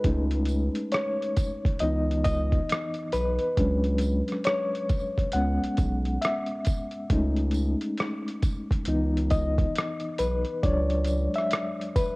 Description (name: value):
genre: lo-fi hip hop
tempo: 68 BPM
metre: 4/4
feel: swing 63% on 16ths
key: unclear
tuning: A4 = 440 Hz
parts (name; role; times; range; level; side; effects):
- bright reed electric piano; accompaniment; 0.0-12.2 s; E3 to F#5; -27 LUFS; left 1 dB; fast tremolo, cassette tape, low-pass filter
- saturated sub bass; bass; 0.0-11.3 s; B1 to C#2; -27 LUFS; equal; none
- lo-fi sampler-style drum kit; drums; 0.0-12.2 s; hi-hat, kick drum, rim click; -28 LUFS; equal; overdrive, cassette tape
- tambourine; percussion; 0.5-12.2 s; none; -47 LUFS; right 6 dB; none
room: light reverb, digital ambience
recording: home recording on cassette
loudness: -24 LUFS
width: side -24 dB against mid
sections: 0.0-12.2 A section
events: reed electric piano solo 0.0-12.2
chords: 0.0 B13/C#; 1.8 C#m9; 3.6 Bm69/C#; 5.3 E69/B; 7.1 Amaj7#11/C#; 8.9 C#m9; 10.6 E13/C#